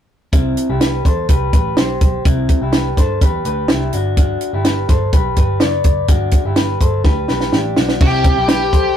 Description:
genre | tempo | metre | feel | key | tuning
jangly indie pop | 125 BPM | 4/4 | straight | unclear | A4 = 440 Hz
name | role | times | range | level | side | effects
electric guitar through a small old amp | arpeggios | 0.3-9.0 s | C4 to D5 | -20 LUFS | left 2 dB | none
vintage muted picked electric bass | bass | 0.3-8.9 s | F#1 to G2 | -21 LUFS | equal | none
compact cocktail drum kit | drums | 0.3-8.8 s | crash cymbal, hi-hat, kick drum, snare drum | -14 LUFS | equal | none
smooth overdriven lead guitar | melody | 8.0-9.0 s | G4 | -16 LUFS | left 2 dB | none
room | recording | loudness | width
moderate small room ambience, RT60 0.5 s | rough rehearsal-room recording, warm saturation | -13 LUFS | side -9 dB against mid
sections
0.3-8.0 A section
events
drum fill 7.1-8.0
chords
0.3 Cmaj7; 3.9 Gmaj7; 8.0 Cmaj7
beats
| 0.33 0.81 1.29 1.77 | 2.25 2.73 3.21 3.69 | 4.17 4.65 5.13 5.61 | 6.09 6.57 7.05 7.53 | 8.01 8.49

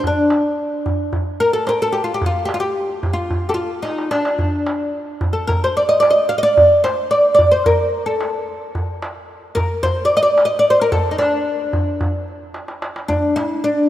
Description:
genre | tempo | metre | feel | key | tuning
Turkish makam ensemble | 110 BPM | 4/4 | straight | D makam kurdi | A4 = 440 Hz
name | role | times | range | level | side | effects
oud | melody | 0.0-13.9 s | D4 to F5 | -16 LUFS | equal | none
darbuka | percussion | 0.0-13.5 s | none | -23 LUFS | right 1 dB | none
room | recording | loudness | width
moderate lush hall reverb, RT60 3.1 s | rough home demo mix | -15 LUFS | side -13 dB against mid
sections
0.0-13.1 A section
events
drum fill 3.9-4.4, 12.6-13.1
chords
none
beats
| 0.03 0.58 1.12 1.67 | 2.21 2.76 3.31 3.85 | 4.39 4.94 5.48 6.03 | 6.57 7.12 7.66 8.20 | 8.75 9.29 9.83 10.38 | 10.92 11.46 12.01 12.55 | 13.09 13.64

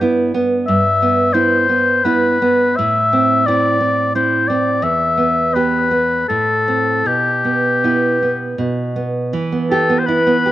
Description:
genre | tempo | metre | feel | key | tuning
romantic duo for oboe and classical guitar | 76-90 BPM | 3/4 | rubato | E minor | A4 = 438 Hz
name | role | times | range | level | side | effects
nylon-string guitar | accompaniment | 0.0-10.5 s | E2 to G4 | -17 LUFS | right 3 dB | slapback echo
warm oboe | melody | 0.7-10.5 s | G4 to E5 | -15 LUFS | left 2 dB | slapback echo
room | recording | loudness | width
little or no reverb | recorded outdoors, with no room sound | -13 LUFS | side -14 dB against mid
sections
0.0-9.3 A section; 9.3-10.5 B section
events
none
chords
0.0 Em/G; 2.8 Am; 4.8 Em; 6.3 Am; 7.1 Em/B; 8.6 N.C.; 9.3 Em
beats
0.02 | 0.69 1.36 2.04 | 2.77 3.46 4.15 | 4.83 5.55 6.28 | 7.05 7.83 8.58 | 9.34 10.07

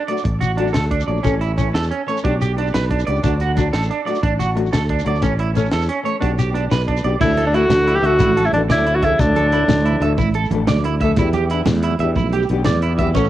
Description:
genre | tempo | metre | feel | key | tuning
highlife guitar band | 121 BPM (dotted quarters) | 12/8 | straight | D major | A4 = 441 Hz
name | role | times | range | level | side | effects
electric guitar at the edge of break-up | arpeggios | 0.0-13.2 s | C#4 to E5 | -22 LUFS | right 6 dB | cassette tape, analog delay
nylon-string guitar | accompaniment | 0.1-13.3 s | E3 to A4 | -25 LUFS | left 6 dB | cassette tape
tight funk drum kit | drums | 0.1-13.2 s | crash cymbal, hi-hat, kick drum, snare drum | -24 LUFS | equal | cassette tape
shekere | percussion | 0.1-13.3 s | none | -24 LUFS | left 4 dB | none
sustaining fretless electric bass | bass | 0.2-13.3 s | A1 to E2 | -20 LUFS | equal | none
clear alto saxophone | melody | 7.2-10.2 s | D4 to G4 | -16 LUFS | left 1 dB | cassette tape
warm trombone | second line | 7.2-10.2 s | A2 to E3 | -28 LUFS | right 6 dB | cassette tape
congas | percussion | 7.2-13.2 s | none | -25 LUFS | right 6 dB | none
room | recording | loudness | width
light reverb, small room ambience | home recording on cassette | -15 LUFS | side -13 dB against mid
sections
0.0-7.2 A section; 7.2-13.3 B section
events
none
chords
0.0 D; 1.3 A; 2.2 G/B; 3.2 D; 5.2 A; 6.2 G/B; 7.2 Dsus2; 11.2 Em7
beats
0.26 0.75 | 1.25 1.75 2.25 2.74 | 3.24 3.74 4.24 4.73 | 5.23 5.73 6.22 6.72 | 7.22 7.71 8.21 8.70 | 9.20 9.69 10.19 10.68 | 11.18 11.67 12.16 12.66 | 13.15

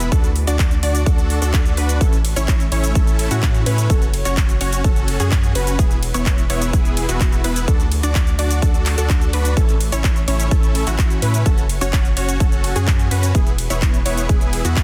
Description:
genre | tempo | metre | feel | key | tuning
EDM, festival progressive house | 127 BPM | 4/4 | straight | A major | A4 = 439 Hz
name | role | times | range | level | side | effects
lush unison pad | sustained chords | 0.0-14.8 s | A3 to E5 | -35 LUFS | equal | chorus, phaser, vintage 12-bit sampler grit, sidechain pumping
unison pluck | arpeggios | 0.0-14.8 s | F#4 to D5 | -32 LUFS | equal | sidechain pumping, delay
dense compressed supersaw | riff | 0.0-14.8 s | B3 to D5 | -27 LUFS | equal | sidechain pumping, delay
saturated sub bass | bass | 0.0-14.8 s | E1 to A2 | -23 LUFS | equal | sidechain pumping
big-room dance drum kit | drums | 0.0-14.8 s | handclaps, hi-hat, ride cymbal, shaker | -29 LUFS | equal | none
electronic kick drum | drums | 0.1-14.8 s | none | -19 LUFS | equal | none
room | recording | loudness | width
little or no reverb | dense, heavily limited modern master | -17 LUFS | mono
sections
0.0-14.8 A section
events
none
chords
0.1 D; 2.0 A; 3.9 F#m; 5.8 E; 7.7 D; 9.6 A; 11.5 F#m; 13.3 E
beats
| 0.12 0.59 1.06 1.54 | 2.01 2.48 2.95 3.43 | 3.90 4.37 4.84 5.32 | 5.79 6.26 6.73 7.21 | 7.68 8.15 8.62 9.10 | 9.57 10.04 10.51 10.99 | 11.46 11.93 12.40 12.88 | 13.35 13.82 14.29 14.77

